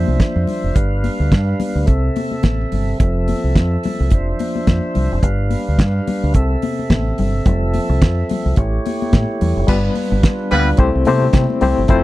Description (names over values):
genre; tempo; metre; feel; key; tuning
disco; 108 BPM; 4/4; swing 56% on 16ths; unclear; A4 = 440 Hz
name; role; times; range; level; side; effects
tonewheel organ; sustained chords; 0.0-12.0 s; C3 to F5; -23 LUFS; right 1 dB; slow rotary speaker
deep dub fingered electric bass; bass; 0.0-12.0 s; F1 to C3; -17 LUFS; equal; none
congas; percussion; 0.1-12.0 s; none; -25 LUFS; left 6 dB; none
damped 70s drum kit; drums; 0.2-12.0 s; crash cymbal, hi-hat, kick drum, snare drum; -14 LUFS; equal; none
barky reed electric piano; accompaniment; 9.7-12.0 s; G3 to C5; -17 LUFS; left 4 dB; overdrive, fast tremolo
mellow horn section; stabs; 10.5-10.7 s; G3 to B4; -17 LUFS; equal; none
room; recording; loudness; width
small room ambience; dry, close 1970s-style studio recording; -14 LUFS; side -17 dB against mid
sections
0.0-9.7 A section; 9.7-12.0 B section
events
none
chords
0.0 Dm7; 0.8 G7; 1.9 C6; 3.0 Fmaj7; 4.1 Dm7/F; 5.2 G7; 6.3 C6; 7.5 Fmaj7; 8.6 A7; 9.7 G7; 10.8 C6